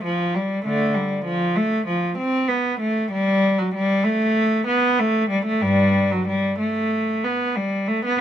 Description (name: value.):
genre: classical, baroque-style suite movement for unaccompanied cello.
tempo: 96 BPM.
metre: 4/4.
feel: rubato.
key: G major from 3.1 s.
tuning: A4 = 440 Hz.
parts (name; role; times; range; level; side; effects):
rich cello; solo; 0.0-8.2 s; G2 to C4; -19 LUFS; equal; none.
room: light reverb.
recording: close, detailed microphones.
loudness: -19 LUFS.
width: side -10 dB against mid.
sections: 0.0-8.2 A section.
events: none.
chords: none.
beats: 0.02 | 0.64 1.25 1.86 2.48 | 3.11 3.73 4.36 4.99 | 5.63 6.28 6.93 7.57.